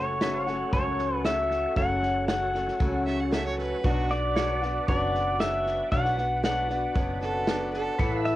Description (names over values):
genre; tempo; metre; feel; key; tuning
honky-tonk and classic country; 116 BPM; 4/4; straight; unclear; A4 = 439 Hz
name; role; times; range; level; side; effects
pedal steel guitar; melody; 0.0-8.4 s; C#5 to F#5; -28 LUFS; left 1 dB; cassette tape
overdriven tonewheel organ; accompaniment; 0.0-8.4 s; F#4 to E5; -36 LUFS; right 4 dB; slow rotary speaker, chorus vibrato, cassette tape
picked old ladder-braced acoustic guitar; accompaniment; 0.0-8.4 s; F#2 to F#4; -31 LUFS; left 2 dB; cassette tape
upright bass; bass; 0.0-8.4 s; F#1 to C#2; -33 LUFS; equal; none
pedal steel guitar; sustained chords; 0.2-8.4 s; B4 to F#5; -37 LUFS; equal; wide subtle chorus, cassette tape
natural country drum kit; drums; 0.2-8.3 s; hi-hat, kick drum, snare drum; -30 LUFS; equal; cassette tape
clear fiddle; second line; 3.1-4.1, 7.2-8.1 s; F#4 to F#5; -33 LUFS; right 4 dB; cassette tape
warm chamber violin section; sustained chords; 8.0-8.4 s; B4 to E6; -40 LUFS; right 2 dB; none
room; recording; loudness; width
little or no reverb; home recording on cassette; -24 LUFS; side -15 dB against mid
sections
0.0-8.4 A section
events
none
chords
0.0 F#m; 3.8 Bm